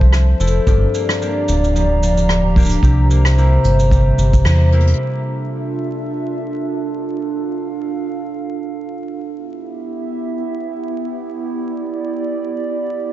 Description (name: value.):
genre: folktronica.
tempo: 111 BPM.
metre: 4/4.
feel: swing 56% on 16ths.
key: unclear.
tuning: A4 = 440 Hz.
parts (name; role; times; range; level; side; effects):
warbly tape-like pad; sustained chords; 0.0-13.1 s; F3 to Bb5; -22 LUFS; right 2 dB; chorus, built-in reverb.
concert harp; arpeggios; 0.0-9.2 s; G2 to A4; -20 LUFS; left 1 dB; ping-pong delay.
round analog bass; bass; 0.0-4.9 s; D1 to E2; -14 LUFS; equal; none.
kick drum; drums; 0.0-4.4 s; none; -14 LUFS; equal; none.
soft brush drum kit; drums; 0.1-5.0 s; hi-hat, rim click, shaker; -26 LUFS; equal; low-pass filter on hats, low-pass filter on snare, low-pass filter on perc, low-pass filter on room.
room: small room ambience.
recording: dark, warm production, vinyl crackle, nothing above 7.7 kHz.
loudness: -15 LUFS.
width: side -14 dB against mid.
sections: 0.0-5.0 A section; 5.0-13.1 B section.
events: band accent 4.5; drum fill 4.7.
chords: 0.0 Fmaj7; 0.7 Gm7; 2.8 C7; 5.0 Dmadd9; 9.3 Em.